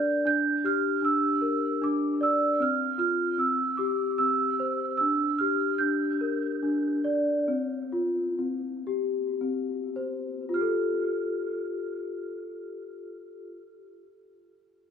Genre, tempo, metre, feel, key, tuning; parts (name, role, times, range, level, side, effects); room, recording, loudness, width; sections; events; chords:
children's music, lullaby; 49-78 BPM; 3/4; rubato; F major; A4 = 440 Hz
large celesta; solo; 0.0-13.7 s; C4 to G6; -25 LUFS; equal; tape echo
wet recital hall reverb, RT60 1.4 s; -25 LUFS; side -7 dB against mid
0.0-5.0 A section; 5.0-10.5 B section; 10.5-14.1 C section
slowing down 5.0-10.5
0.0 Gm; 2.6 F5/C; 3.4 C; 5.0 Gm; 7.5 F5/C; 10.5 Fadd9